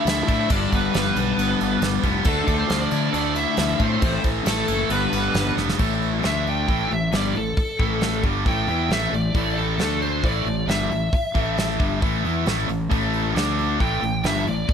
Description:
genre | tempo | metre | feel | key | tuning
classic rock | 135 BPM | 4/4 | straight | unclear | A4 = 440 Hz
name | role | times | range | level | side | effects
biting lead guitar | melody | 0.0-14.7 s | A4 to G5 | -26 LUFS | left 1 dB | overdrive
nasal lead guitar with a parked wah | second line | 0.0-5.5 s | A3 to E4 | -31 LUFS | right 4 dB | overdrive
distorted electric guitar | riff | 0.0-14.7 s | G2 to E4 | -27 LUFS | right 13 dB | overdrive
overdriven electric guitar | riff | 0.0-14.7 s | G2 to E4 | -26 LUFS | left 10 dB | none
fuzz fingered electric bass | bass | 0.1-14.7 s | F1 to D3 | -26 LUFS | equal | overdrive
soft brush drum kit | drums | 0.1-14.7 s | crash cymbal, hi-hat, kick drum, snare drum | -25 LUFS | equal | none
room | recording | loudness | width
little or no reverb | none | -19 LUFS | side -7 dB against mid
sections
0.0-5.8 A section; 5.8-14.7 B section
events
drum fill 5.6; lead electric guitar solo 5.8-14.7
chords
0.0 Dmadd9; 0.5 G; 2.3 Dmadd9; 4.0 A5; 4.9 G; 5.8 A5; 6.2 D5; 6.7 A5; 9.8 D5; 10.2 A5; 13.4 D5; 13.8 A5

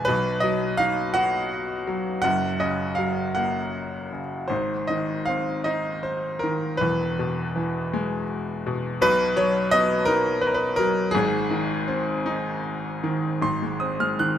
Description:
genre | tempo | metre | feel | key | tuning
classical, lyrical solo piano | 51-58 BPM (dotted quarters) | 6/8 | rubato | unclear | A4 = 444 Hz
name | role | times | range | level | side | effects
bright grand piano | solo | 0.0-14.4 s | E1 to Gb6 | -22 LUFS | equal | none
room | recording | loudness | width
light reverb | close, detailed microphones | -22 LUFS | side -10 dB against mid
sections
0.0-13.4 A section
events
none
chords
0.1 B; 2.2 Gb; 4.5 Ab; 6.8 E; 9.0 B; 11.1 Ab

